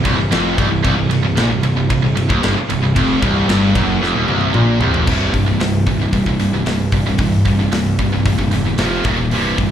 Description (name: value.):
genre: heavy metal.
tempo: 113 BPM.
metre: 4/4.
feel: straight.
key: C minor.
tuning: A4 = 439 Hz.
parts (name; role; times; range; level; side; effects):
distorted electric guitar; riff; 0.0-5.1 s; C2 to Bb2; -22 LUFS; left 1 dB; overdrive, slapback echo.
heavy high-gain guitar; riff; 0.0-9.7 s; C2 to F3; -21 LUFS; left 7 dB; distortion.
heavy high-gain guitar; riff; 0.0-9.7 s; C2 to F3; -19 LUFS; right 7 dB; distortion, slapback echo.
fuzz picked electric bass; bass; 0.0-9.7 s; C1 to Bb1; -20 LUFS; left 1 dB; overdrive.
modern studio drum kit; drums; 0.1-9.7 s; crash cymbal, hi-hat, kick drum, ride cymbal, snare drum, toms; -21 LUFS; equal; none.
room: small room ambience.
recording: live gig heard through the venue's PA, club reverb.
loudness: -13 LUFS.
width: side -9 dB against mid.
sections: 0.0-5.1 A section; 5.1-9.7 B section.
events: drum fill 4.0-5.1.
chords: 0.0 Cm; 5.1 C5; 8.8 F5; 9.1 Eb5.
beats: 0.32 | 0.84 1.37 1.90 2.43 | 2.96 3.49 4.01 4.54 | 5.07 5.60 6.13 6.66 | 7.19 7.72 8.26 8.79 | 9.32.